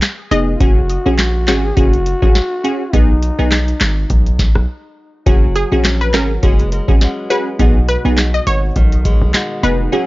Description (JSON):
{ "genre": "dancehall", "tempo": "103 BPM", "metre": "4/4", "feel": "swing 56% on 16ths", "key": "unclear", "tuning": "A4 = 435 Hz", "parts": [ { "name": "booming analog drum machine", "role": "drums", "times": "0.0-9.8 s", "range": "handclaps, hi-hat, kick drum, rim click, snare drum", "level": "-13 LUFS", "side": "equal", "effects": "vintage 12-bit sampler grit" }, { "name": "analog pluck", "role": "melody", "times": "0.3-0.4, 5.6-9.8 s", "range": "G#4 to D#5", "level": "-21 LUFS", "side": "left 1 dB", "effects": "chorus, analog delay" }, { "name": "wavetable chord stab", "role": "accompaniment", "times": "0.3-10.1 s", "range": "B3 to G#4", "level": "-18 LUFS", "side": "equal", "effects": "none" }, { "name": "hard-hitting 808-style bass", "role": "bass", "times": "0.3-9.9 s", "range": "E#1 to B1", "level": "-17 LUFS", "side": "equal", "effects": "none" }, { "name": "trombone with bucket mute", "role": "second line", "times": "0.5-4.1 s", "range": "D#4 to G#4", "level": "-22 LUFS", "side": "left 1 dB", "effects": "analog delay" }, { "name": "nylon-string guitar", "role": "arpeggios", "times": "5.3-10.1 s", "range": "B2 to F#4", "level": "-24 LUFS", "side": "left 1 dB", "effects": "none" } ], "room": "digital ambience", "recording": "dry, gritty hardware recording, nothing above 7.5 kHz", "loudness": "-12 LUFS", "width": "side -19 dB against mid", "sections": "0.0-10.1 A section", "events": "break 4.7-5.3", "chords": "0.0 B6; 0.6 F#sus2; 2.9 B6; 5.3 F#sus2; 7.6 B6" }